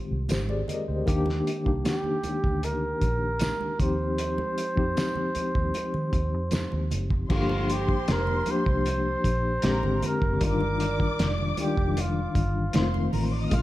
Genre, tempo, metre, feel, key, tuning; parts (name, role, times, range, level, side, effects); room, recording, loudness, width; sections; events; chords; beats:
lush 1970s-style soul; 77 BPM; 4/4; straight; Eb major; A4 = 440 Hz
mellow tine electric piano; accompaniment; 0.0-13.6 s; Db3 to Eb5; -29 LUFS; left 2 dB; medium tremolo
vintage muted fingered electric bass; bass; 0.1-13.6 s; F1 to Eb3; -29 LUFS; equal
cloth-damped thuddy drum kit; drums; 0.3-13.6 s; crash cymbal, hi-hat, kick drum, snare drum; -29 LUFS; equal
congas; percussion; 0.3-13.3 s; -38 LUFS; right 4 dB
tambourine; percussion; 0.3-6.7 s; -47 LUFS; right 7 dB
breathy flugelhorn; melody; 1.9-13.6 s; F4 to C5; -31 LUFS; right 1 dB
muted studio string section; second line; 7.3-13.6 s; Bb4 to F6; -35 LUFS; equal
light reverb, small room reverb; dark, warm production; -24 LUFS; side -16 dB against mid
0.0-7.3 A section; 7.3-13.6 B section
0.0 Abmaj7; 1.1 Ebmaj7; 3.8 Eb69; 7.3 Gm7; 9.6 Bb13; 10.4 Ebmaj9; 12.7 F7
0.29 | 1.07 1.85 2.63 3.41 | 4.19 4.96 5.74 6.52 | 7.30 8.08 8.86 9.63 | 10.41 11.19 11.97 12.74 | 13.52